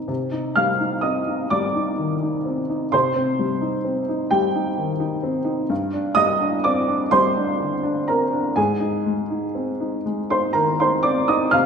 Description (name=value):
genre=neoclassical minimalist piano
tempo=40-44 BPM (dotted quarters)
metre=6/8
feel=rubato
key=C minor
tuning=A4 = 440 Hz
part: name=dark upright piano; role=solo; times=0.0-11.7 s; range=G2 to F6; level=-19 LUFS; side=equal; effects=none
room=wet recital hall reverb, RT60 1.4 s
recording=minimal, uncompressed stereo recording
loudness=-19 LUFS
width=side -6 dB against mid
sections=0.1-11.7 A section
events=none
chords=0.1 Cm; 5.7 Gsus4; 8.6 Ab